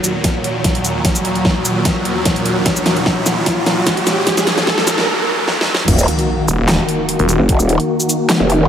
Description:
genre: heavy wobble dubstep.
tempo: 149 BPM.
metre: 4/4.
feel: half-time.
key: Eb minor.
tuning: A4 = 440 Hz.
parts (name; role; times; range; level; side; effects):
supersaw chords; sustained chords; 0.0-8.7 s; Eb2 to Gb4; -18 LUFS; equal; phaser, sidechain pumping, low-pass filter.
dubstep drum kit; drums; 0.0-8.6 s; crash cymbal, handclaps, hi-hat, shaker, snare drum; -17 LUFS; equal; overdrive.
riser and sub drop; sound effects; 1.9-7.5 s; none; -22 LUFS; right 1 dB; none.
electronic kick drum; drums; 0.2-7.6 s; none; -19 LUFS; equal; overdrive.
growl bass; bass; 5.9-8.7 s; Eb1 to Gb1; -14 LUFS; equal; chorus, overdrive.
snarling distorted saw bass; bass; 6.5-7.4 s; Eb1; -16 LUFS; equal; distortion, overdrive.
room: wet cathedral reverb, RT60 4.8 s.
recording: dreamy mix soaked in reverb, high-pass filter.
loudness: -13 LUFS.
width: side -9 dB against mid.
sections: 0.0-5.9 A section; 5.9-8.7 B section.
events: build-up 0.0-5.9; drum fill 0.0-5.1, 5.5-5.9; riser 1.9-5.1; drop 5.9-8.7; impact 5.9-7.5.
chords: 0.0 Ebm.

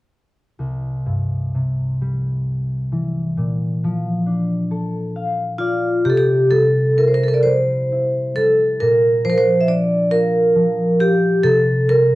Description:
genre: celtic folk, Celtic slow air.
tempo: 44 BPM (dotted quarters).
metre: 6/8.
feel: uneven beats, rubato.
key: C mixolydian.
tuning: A4 = 439 Hz.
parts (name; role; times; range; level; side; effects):
concert harp; accompaniment; 0.6-12.2 s; C2 to F5; -20 LUFS; left 1 dB; cassette tape.
vibraphone with medium hard mallets; melody; 5.6-12.2 s; F4 to E5; -15 LUFS; equal; none.
room: light reverb, studio ambience.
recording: home recording on cassette.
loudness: -16 LUFS.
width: side -17 dB against mid.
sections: 0.6-6.0 A section; 6.0-12.2 B section.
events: harp fill 4.7-6.0.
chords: 0.6 C; 3.4 Bbmaj7; 6.0 C; 8.8 Bb; 11.4 Csus2.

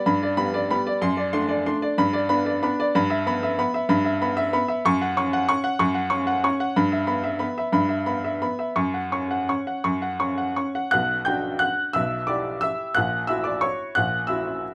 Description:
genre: classical, piano waltz.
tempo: 158-201 BPM.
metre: 3/4.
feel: rubato.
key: unclear.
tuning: A4 = 439 Hz.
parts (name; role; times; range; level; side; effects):
clear upright piano; solo; 0.0-14.7 s; A#1 to G6; -24 LUFS; equal; none.
room: light reverb.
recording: close, detailed microphones.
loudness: -24 LUFS.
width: mono.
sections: 0.0-10.9 A section; 10.9-14.7 B section.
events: none.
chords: 0.0 G; 1.0 D7/F#; 2.0 G; 2.9 Em/G; 4.9 F#5; 6.8 Em/G; 8.8 F#5; 10.9 Bm; 11.9 Em/B; 13.0 F#7/A#.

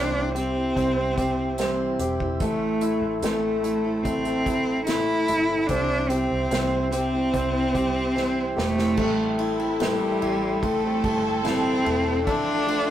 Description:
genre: pop ballad.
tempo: 73 BPM.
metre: 4/4.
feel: straight.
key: unclear.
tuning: A4 = 439 Hz.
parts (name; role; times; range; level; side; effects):
clear cello; melody; 0.0-12.9 s; G3 to E4; -25 LUFS; right 1 dB; none.
clear concert grand piano; accompaniment; 0.0-12.9 s; A3 to A4; -27 LUFS; left 2 dB; none.
mellow flute section; sustained chords; 0.0-12.9 s; G4 to E6; -33 LUFS; left 1 dB; none.
picked steel-string acoustic guitar; arpeggios; 0.0-12.9 s; A2 to C5; -33 LUFS; right 3 dB; none.
vintage muted fingered electric bass; bass; 0.0-12.8 s; E1 to C2; -33 LUFS; equal; none.
unplugged drum kit; drums; 0.4-12.9 s; crash cymbal, hi-hat, kick drum, ride cymbal, snare drum; -32 LUFS; right 1 dB; none.
warm studio violin section; second line; 9.0-12.9 s; E4 to A4; -32 LUFS; right 1 dB; none.
room: light reverb.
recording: rough rehearsal-room recording, tube saturation.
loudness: -21 LUFS.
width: side -11 dB against mid.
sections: 0.0-9.0 A section; 9.0-12.9 B section.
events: drum fill 8.2-9.0.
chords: 0.0 C; 2.4 Am; 5.7 C; 9.0 Am7; 12.3 Fmaj7.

